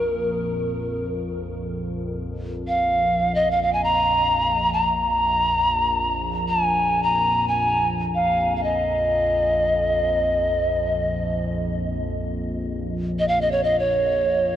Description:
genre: world meditative, free-time meditation music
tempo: free time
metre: none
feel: none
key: Bb minor pentatonic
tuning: A4 = 440 Hz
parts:
  - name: polished pan flute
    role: melody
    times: 0.0-14.6 s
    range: Bb4 to Bb5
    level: -20 LUFS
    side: equal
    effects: diffuse ambient delay
  - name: analog drone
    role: drone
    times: 0.0-14.6 s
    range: Bb1 to F2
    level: -28 LUFS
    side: equal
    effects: chorus
room: wet huge ambient reverb, RT60 7.1 s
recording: worn, warbling old tape, cassette tape, warbly pitch drift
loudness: -20 LUFS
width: side -11 dB against mid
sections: 0.0-1.8 A section; 1.8-14.6 A section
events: none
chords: none

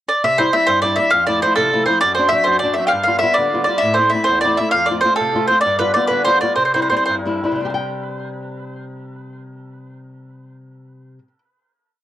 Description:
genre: italian folk, Italian serenade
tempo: 105-135 BPM (dotted quarters)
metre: 6/8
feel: straight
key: C major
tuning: A4 = 439 Hz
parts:
  - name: mandolin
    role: melody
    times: 0.1-7.1 s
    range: A4 to G5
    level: -15 LUFS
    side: right 1 dB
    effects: tape echo
  - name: flamenco guitar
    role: accompaniment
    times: 0.2-11.4 s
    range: E2 to G5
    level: -22 LUFS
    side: left 2 dB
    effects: none
room: light reverb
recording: dry, gritty hardware recording, cassette tape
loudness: -14 LUFS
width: side -13 dB against mid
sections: 0.0-0.2 pickup bar; 0.2-7.6 A section; 7.6-9.9 final chord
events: slowing down 5.6-7.6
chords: 0.2 C; 1.1 Fmaj7; 2.0 D7/F#; 2.9 G7; 3.8 Am; 4.7 F; 5.6 G7; 6.6 C; 7.6 C5

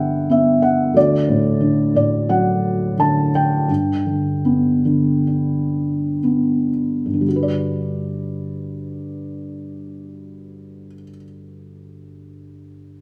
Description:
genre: classical, lyrical solo piano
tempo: 58-93 BPM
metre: 4/4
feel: rubato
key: G major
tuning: A4 = 440 Hz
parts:
  - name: felt-muted upright piano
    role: solo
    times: 0.0-13.0 s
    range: D2 to A5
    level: -19 LUFS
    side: equal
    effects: none
room: wet recital hall reverb, RT60 1.7 s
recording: none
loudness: -18 LUFS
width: mono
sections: 0.0-7.3 A section; 7.3-11.1 B section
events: slowing down 1.0-7.3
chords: 0.0 Gmaj7; 1.0 D; 3.7 G; 7.3 Gmaj7

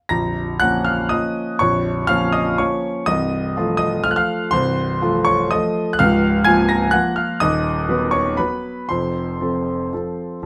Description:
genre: classical, piano waltz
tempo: 113-131 BPM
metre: 3/4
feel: rubato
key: Bb minor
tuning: A4 = 439 Hz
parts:
  - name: clear grand piano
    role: solo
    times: 0.1-10.5 s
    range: Bb0 to Bb6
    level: -19 LUFS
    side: equal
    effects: none
room: light reverb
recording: none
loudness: -19 LUFS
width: mono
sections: 0.1-10.5 A section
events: none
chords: 0.1 Bbm; 3.1 F7/C; 6.0 Bbm/Db; 7.4 B/D#; 8.9 F

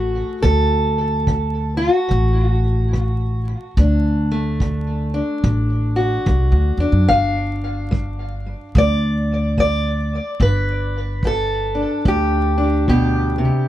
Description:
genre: acoustic country blues, solo or duo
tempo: 72 BPM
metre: 4/4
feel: swing 62% on 8ths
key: D major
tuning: A4 = 440 Hz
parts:
  - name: fingerpicked steel-string acoustic guitar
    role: melody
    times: 0.0-13.7 s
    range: G2 to F5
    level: -20 LUFS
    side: equal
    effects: tape echo
  - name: upright bass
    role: bass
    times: 0.0-13.5 s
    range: G1 to F#2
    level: -18 LUFS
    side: equal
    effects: none
  - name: kick drum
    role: drums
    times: 0.4-13.1 s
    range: none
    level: -22 LUFS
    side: equal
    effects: none
room: little or no reverb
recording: close, detailed microphones, vinyl crackle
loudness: -16 LUFS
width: side -13 dB against mid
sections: 0.0-13.7 A section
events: none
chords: 0.0 D; 7.1 G5

